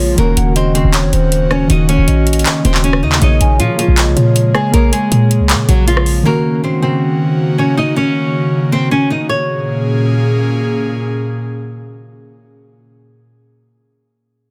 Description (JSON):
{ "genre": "hip hop, trap", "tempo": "158 BPM", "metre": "4/4", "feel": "half-time", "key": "Bb minor", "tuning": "A4 = 440 Hz", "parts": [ { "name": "nylon-string guitar", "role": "melody", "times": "0.0-10.4 s", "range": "F3 to Eb5", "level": "-20 LUFS", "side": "equal", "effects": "none" }, { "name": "hollow clarinet-like synth lead", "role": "second line", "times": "0.0-4.7 s", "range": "C5 to Ab5", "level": "-25 LUFS", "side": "equal", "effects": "chorus, tape echo" }, { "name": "muted felt-like synth keys", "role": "accompaniment", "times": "0.0-7.8 s", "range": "Db3 to Db5", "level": "-21 LUFS", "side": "equal", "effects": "chorus" }, { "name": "airy breathy pad", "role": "sustained chords", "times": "0.0-12.3 s", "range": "Bb2 to Ab4", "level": "-20 LUFS", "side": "equal", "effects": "chorus" }, { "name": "short 808-style bass", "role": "bass", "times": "0.0-6.2 s", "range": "Eb1 to Bb2", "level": "-15 LUFS", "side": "equal", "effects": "none" }, { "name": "trap drum kit", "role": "drums", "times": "0.2-6.2 s", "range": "handclaps, hi-hat, rim click", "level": "-20 LUFS", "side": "equal", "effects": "none" } ], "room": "little or no reverb", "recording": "dense, heavily limited modern master", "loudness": "-13 LUFS", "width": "mono", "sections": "0.0-9.3 A section; 9.3-12.3 B section", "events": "none", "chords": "0.2 Ebm7; 3.2 Bbm7; 6.3 Ebm7; 9.3 Bbm7", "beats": "| 0.18 0.56 0.94 1.32 | 1.70 2.08 2.46 2.84 | 3.22 3.60 3.98 4.36 | 4.74 5.12 5.50 5.88 | 6.25 6.63 7.01 7.39 | 7.77 8.15 8.53 8.91 | 9.29 9.67 10.05 10.43 | 10.81 11.19 11.57 11.95" }